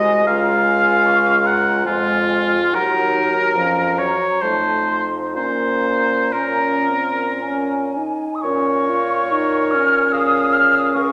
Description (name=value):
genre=classical, slow romantic movement for wind quintet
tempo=54-77 BPM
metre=3/4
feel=rubato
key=Bb minor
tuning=A4 = 440 Hz
part: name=mellow hollow silver concert flute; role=melody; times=0.0-11.1 s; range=F5 to F6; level=-24 LUFS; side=equal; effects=none
part: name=warm oboe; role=second line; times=0.0-11.1 s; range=F4 to Gb5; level=-20 LUFS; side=equal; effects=none
part: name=clear French horn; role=accompaniment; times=0.0-11.1 s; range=F3 to F4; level=-27 LUFS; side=equal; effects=none
part: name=warm clarinet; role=accompaniment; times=0.0-11.1 s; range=Db4 to Bb4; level=-29 LUFS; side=equal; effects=none
part: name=mellow bassoon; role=bass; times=0.0-11.1 s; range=C2 to Bb2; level=-27 LUFS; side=equal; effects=none
room=wet recital hall reverb, RT60 1.4 s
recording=none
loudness=-18 LUFS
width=mono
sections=0.0-8.5 A section; 8.5-11.1 A section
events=none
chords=0.3 Db; 2.7 Ebm; 3.6 Bbm/F; 4.4 F7; 5.4 Bbm